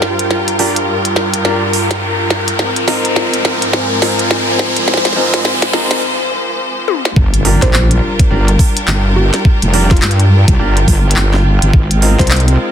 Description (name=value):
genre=glitch hop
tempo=105 BPM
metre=4/4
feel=swing 61% on 16ths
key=G phrygian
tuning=A4 = 435 Hz
part: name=bright studio string section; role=sustained chords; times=0.0-12.7 s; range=G2 to C5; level=-19 LUFS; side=left 1 dB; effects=sidechain pumping
part: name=glitchy drum kit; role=drums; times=0.0-12.6 s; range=handclaps, hi-hat, snare drum, toms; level=-17 LUFS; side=equal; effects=small room ambience, soft clipping on snare
part: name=riser and impact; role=sound effects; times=0.0-9.4 s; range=none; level=-19 LUFS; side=equal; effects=none
part: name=ethereal airy pad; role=texture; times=0.0-12.7 s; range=F4 to Bb5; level=-22 LUFS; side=equal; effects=ensemble chorus, built-in reverb, sidechain pumping
part: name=bright baby grand piano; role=stabs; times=0.6-12.7 s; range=C4 to Bb4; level=-20 LUFS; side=right 1 dB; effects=sidechain pumping, low-pass filter, digital delay
part: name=wobble bass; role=bass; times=7.2-12.6 s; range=F1 to G2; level=-11 LUFS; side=equal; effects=chorus, tube saturation
part: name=electronic kick drum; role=drums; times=7.2-12.3 s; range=none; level=-12 LUFS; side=equal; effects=small room ambience
part: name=woody wave-folded pluck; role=melody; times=7.6-12.4 s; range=F4 to C5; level=-23 LUFS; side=right 1 dB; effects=chorus, digital delay
room=light reverb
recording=dense, heavily limited modern master, high-pass filter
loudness=-10 LUFS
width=side -9 dB against mid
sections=0.0-7.2 A section; 7.2-12.7 B section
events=build-up 0.0-7.2; drum fill 0.0-6.0, 6.9; riser 0.0-6.0; break 6.0-7.2; drop 7.2-12.7; impact 7.2-9.4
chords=0.0 Gm7; 2.6 Ab69; 7.2 Gm7; 11.7 Ab69